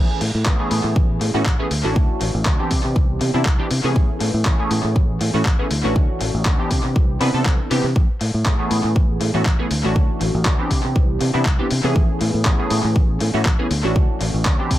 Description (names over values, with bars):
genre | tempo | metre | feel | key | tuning
filtered disco house | 120 BPM | 4/4 | swing 53% on 16ths | A major | A4 = 440 Hz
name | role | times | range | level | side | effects
funky polysynth comp | accompaniment | 0.0-14.8 s | E3 to B4 | -23 LUFS | equal | chorus, phaser, sidechain pumping, low-pass filter
fingered electric bass | bass | 0.0-14.8 s | A1 to C3 | -22 LUFS | equal | sidechain pumping, low-pass filter
dusty soul sampler-style drum kit | drums | 0.2-14.8 s | handclaps, hi-hat | -25 LUFS | left 1 dB | small room ambience, analog delay
electronic kick drum | drums | 0.5-14.8 s | none | -18 LUFS | equal | small room ambience
room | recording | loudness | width
light reverb, digital ambience | echo-heavy mix | -16 LUFS | side -14 dB against mid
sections
0.0-14.8 A section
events
none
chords
0.0 Amaj9; 1.7 Dmaj9; 2.7 Cmaj9; 4.0 Amaj9; 5.7 Dmaj9; 6.7 Cmaj9; 8.0 Amaj9; 9.7 Dmaj9; 10.7 Cmaj9; 12.0 Amaj9; 13.7 Dmaj9